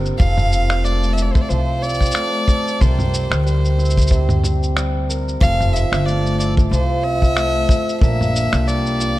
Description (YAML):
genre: folktronica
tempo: 92 BPM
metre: 4/4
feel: swing 56% on 16ths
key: F major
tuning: A4 = 435 Hz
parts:
  - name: cimbalom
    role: arpeggios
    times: 0.0-9.2 s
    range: Bb2 to Bb4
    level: -23 LUFS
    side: right 1 dB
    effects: ping-pong delay
  - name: upright bass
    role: bass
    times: 0.0-9.2 s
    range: F1 to D2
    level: -19 LUFS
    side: equal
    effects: none
  - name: lo-fi sampler-style drum kit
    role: drums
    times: 0.1-9.1 s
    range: finger snaps, shaker, toms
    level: -24 LUFS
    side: right 1 dB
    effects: none
  - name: rich violin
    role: melody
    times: 0.2-9.2 s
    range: C5 to F5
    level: -23 LUFS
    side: left 1 dB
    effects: ping-pong delay
  - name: kick drum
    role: drums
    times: 0.2-8.2 s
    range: none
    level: -15 LUFS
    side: equal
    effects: none
room: small room ambience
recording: dark, warm production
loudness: -15 LUFS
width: side -16 dB against mid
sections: 0.2-9.2 A section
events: break 0.0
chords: 0.2 Fmaj7; 2.8 C7; 5.4 Fmaj7; 8.0 Bb6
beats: | 0.19 0.85 1.50 2.15 | 2.80 3.46 4.11 4.76 | 5.41 6.06 6.72 7.37 | 8.02 8.67